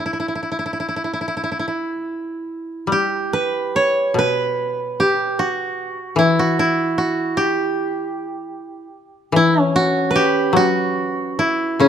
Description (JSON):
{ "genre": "japanese traditional, Japanese chamber music", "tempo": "68-78 BPM", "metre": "4/4", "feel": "rubato", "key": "E kumoi", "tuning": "A4 = 441 Hz", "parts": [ { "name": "koto", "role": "melody", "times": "0.0-11.9 s", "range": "C#4 to C#5", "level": "-18 LUFS", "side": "right 2 dB", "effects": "none" }, { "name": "koto", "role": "accompaniment", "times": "0.0-11.9 s", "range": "B2 to G3", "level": "-21 LUFS", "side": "left 5 dB", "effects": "none" } ], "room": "light reverb", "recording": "close, detailed microphones", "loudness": "-17 LUFS", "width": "side -8 dB against mid", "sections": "0.0-2.9 A section; 2.9-11.9 B section", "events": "none", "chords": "none", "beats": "0.31 1.15 2.03 | 2.90 3.75 4.58 5.38 | 6.17 6.96 7.75 8.54 | 9.34 10.14 10.96 11.80" }